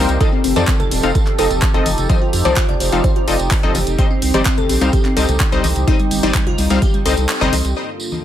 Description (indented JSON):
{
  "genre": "progressive house",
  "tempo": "127 BPM",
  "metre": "4/4",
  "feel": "straight",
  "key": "C dorian",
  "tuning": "A4 = 441 Hz",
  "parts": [
    { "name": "warm analog pad", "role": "sustained chords", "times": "0.0-8.2 s", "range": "G2 to A4", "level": "-25 LUFS", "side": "right 1 dB", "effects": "chorus, sidechain pumping" },
    { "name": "glassy wavetable pluck", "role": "arpeggios", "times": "0.0-7.7 s", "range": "G3 to D5", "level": "-21 LUFS", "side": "equal", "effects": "chorus, sidechain pumping, digital delay" },
    { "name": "supersaw stab", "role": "stabs", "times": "0.0-7.5 s", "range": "F3 to F5", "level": "-21 LUFS", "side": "left 4 dB", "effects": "sidechain pumping, digital delay" },
    { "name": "saturated sub bass", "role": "bass", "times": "0.0-7.7 s", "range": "Eb1 to F2", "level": "-20 LUFS", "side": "equal", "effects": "sidechain pumping" },
    { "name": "deep house drum kit", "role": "drums", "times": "0.1-7.7 s", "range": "handclaps, hi-hat", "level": "-23 LUFS", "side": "equal", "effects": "sidechain pumping on hats" },
    { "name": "tambourine", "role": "percussion", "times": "0.1-8.2 s", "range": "none", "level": "-30 LUFS", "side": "right 3 dB", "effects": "none" },
    { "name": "electronic kick drum", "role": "drums", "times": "0.2-6.9 s", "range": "none", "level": "-17 LUFS", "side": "equal", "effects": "none" },
    { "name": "congas", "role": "percussion", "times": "0.6-8.2 s", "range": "none", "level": "-29 LUFS", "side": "left 2 dB", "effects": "sidechain pumping on perc" }
  ],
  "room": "digital ambience",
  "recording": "none",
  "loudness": "-13 LUFS",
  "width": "side -11 dB against mid",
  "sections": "0.0-7.8 A section",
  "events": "kick drops out 7.3-7.8; band accent 7.3",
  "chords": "0.2 F7; 4.0 Cm"
}